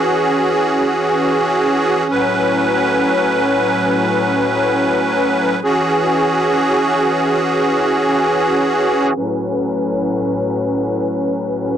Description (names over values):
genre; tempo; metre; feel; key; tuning
hip hop; free time; none; none; A major; A4 = 440 Hz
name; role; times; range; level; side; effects
musette accordion; solo; 0.0-11.8 s; A2 to B4; -14 LUFS; equal; analog delay
room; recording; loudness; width
light reverb, small room ambience; dry, gritty hardware recording, transformer saturation, low-pass filter; -14 LUFS; side -9 dB against mid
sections
0.0-9.2 A section; 9.2-11.8 B section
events
filter sweep 9.2-11.8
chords
0.0 E69; 2.1 A69; 5.6 E69; 9.2 A69